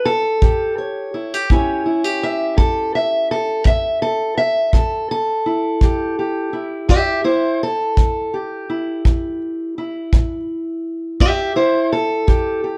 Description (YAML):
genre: acoustic country blues, solo or duo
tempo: 56 BPM (dotted quarters)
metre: 12/8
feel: straight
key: A mixolydian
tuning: A4 = 440 Hz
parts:
  - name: fingerpicked steel-string acoustic guitar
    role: melody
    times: 0.0-12.8 s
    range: A2 to E5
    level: -20 LUFS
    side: equal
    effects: plate reverb
  - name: kick drum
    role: drums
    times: 0.4-12.4 s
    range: none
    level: -17 LUFS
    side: equal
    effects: none
room: moderate studio reverb, RT60 0.5 s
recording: dark, warm production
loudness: -19 LUFS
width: mono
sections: 0.0-1.5 A section; 1.5-12.8 A section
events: steel-string acoustic guitar solo 0.0-12.8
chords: 0.0 A7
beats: 0.41 | 1.50 2.58 3.65 4.73 | 5.81 6.89 7.97 9.05 | 10.12 11.20 12.28